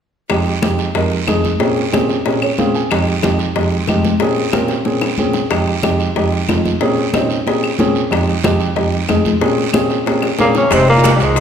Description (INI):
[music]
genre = Afro-Cuban jazz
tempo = 184 BPM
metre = 4/4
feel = straight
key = F minor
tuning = A4 = 440 Hz
[part]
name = warm concert grand piano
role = accompaniment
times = 0.3-11.4 s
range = F2 to Ab5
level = -16 LUFS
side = right 2 dB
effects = none
[part]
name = bongos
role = percussion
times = 0.3-11.4 s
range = none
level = -21 LUFS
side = left 7 dB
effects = none
[part]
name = claves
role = percussion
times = 0.3-11.2 s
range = none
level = -28 LUFS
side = left 6 dB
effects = none
[part]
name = congas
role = percussion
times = 0.3-11.4 s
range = none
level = -22 LUFS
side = left 3 dB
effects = none
[part]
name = guiro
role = percussion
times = 0.3-11.4 s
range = none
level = -27 LUFS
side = right 7 dB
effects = none
[part]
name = warm tenor saxophone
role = melody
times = 10.4-11.4 s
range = G3 to Db4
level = -13 LUFS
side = equal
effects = none
[part]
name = breathy trombone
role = second line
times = 10.4-11.4 s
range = G2 to Db3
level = -21 LUFS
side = left 4 dB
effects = none
[part]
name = upright bass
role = bass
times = 10.7-11.4 s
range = F1 to C2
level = -15 LUFS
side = equal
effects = none
[part]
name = maracas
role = percussion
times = 10.7-11.4 s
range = none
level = -30 LUFS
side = left 5 dB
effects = none
[part]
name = timbales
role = percussion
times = 10.7-11.4 s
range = none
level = -22 LUFS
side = right 5 dB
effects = none
[sound]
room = wet recital hall reverb, RT60 1.6 s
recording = recorded in a church or concert hall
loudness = -13 LUFS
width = side -8 dB against mid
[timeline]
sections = 0.3-10.7 A section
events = grand piano fill 2.3-2.9; drum fill 4.5-5.5, 10.2-10.7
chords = 0.3 Fm7; 1.6 Bbm7; 2.9 Fm7; 4.2 Bbm7; 5.5 Fm7; 6.8 Bbm7; 8.1 Fm7; 9.4 Bbm7; 10.7 Fm9